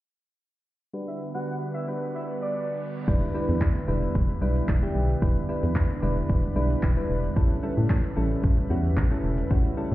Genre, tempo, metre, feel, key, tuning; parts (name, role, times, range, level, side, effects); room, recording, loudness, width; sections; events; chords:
dance-pop; 112 BPM; 4/4; straight; E dorian; A4 = 442 Hz
soft electric-piano-like synth keys; accompaniment; 0.9-9.9 s; G3 to B4; -30 LUFS; equal; chorus, sidechain pumping, low-pass filter
airy breathy pad; sustained chords; 0.9-9.9 s; C#3 to B4; -33 LUFS; right 1 dB; chorus, sidechain pumping, low-pass filter
fat analog lead; melody; 1.1-2.9 s; D5 to F#5; -35 LUFS; right 1 dB; chorus, low-pass filter, digital delay
reverse cymbal; sound effects; 2.3-3.1 s; -52 LUFS; right 5 dB
organ-like FM bass; bass; 3.1-9.9 s; E1 to A2; -25 LUFS; equal; sidechain pumping
deep house drum kit; drums; 3.1-9.9 s; crash cymbal, handclaps, hi-hat, kick drum; -24 LUFS; equal
light reverb, digital ambience; heard muffled through a wall, stone room reverb, EQ; -23 LUFS; side -16 dB against mid
0.9-3.1 A section; 3.1-9.9 B section
filter sweep 0.9-3.1; reverse cymbal 2.3-3.1
0.9 Gmaj7; 3.1 Em7; 7.4 A7